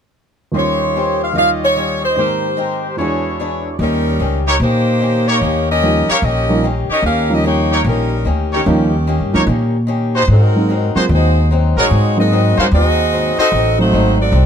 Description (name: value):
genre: jazz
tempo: 148 BPM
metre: 4/4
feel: swing 66% on 8ths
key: Eb mixolydian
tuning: A4 = 439 Hz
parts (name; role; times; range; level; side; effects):
- dark baby grand piano; accompaniment; 0.5-14.3 s; Eb2 to Db5; -19 LUFS; right 2 dB; none
- picked swing-style acoustic guitar; accompaniment; 0.5-14.5 s; Ab2 to C#5; -24 LUFS; left 9 dB; none
- clear trumpet section; stabs; 0.5-13.5 s; D4 to C6; -20 LUFS; equal; none
- clear saxophone section; melody; 0.6-14.5 s; Eb3 to F5; -17 LUFS; equal; none
- upright bass; bass; 3.8-14.5 s; Ab1 to Bb2; -15 LUFS; equal; none
room: light reverb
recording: close, detailed microphones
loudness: -13 LUFS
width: side -8 dB against mid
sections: 0.5-3.8 A section; 3.8-14.5 B section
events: none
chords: 0.5 Eb13; 1.4 Eb9; 2.2 Abmaj9; 3.0 E13; 3.8 Eb7; 10.3 Ab7; 13.5 Adim7